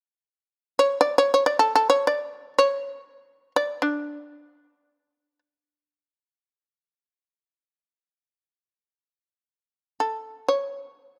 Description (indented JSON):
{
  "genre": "japanese traditional, Japanese chamber music",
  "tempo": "free time",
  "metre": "none",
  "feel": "none",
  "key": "unclear",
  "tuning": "A4 = 441 Hz",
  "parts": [
    { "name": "shamisen", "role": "solo", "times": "0.8-11.2 s", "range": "D4 to D5", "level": "-23 LUFS", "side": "equal", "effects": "none" }
  ],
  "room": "light reverb",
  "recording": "close, detailed microphones",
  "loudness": "-23 LUFS",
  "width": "mono",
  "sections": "0.0-8.8 A section; 8.8-11.2 A section",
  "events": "none",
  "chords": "none"
}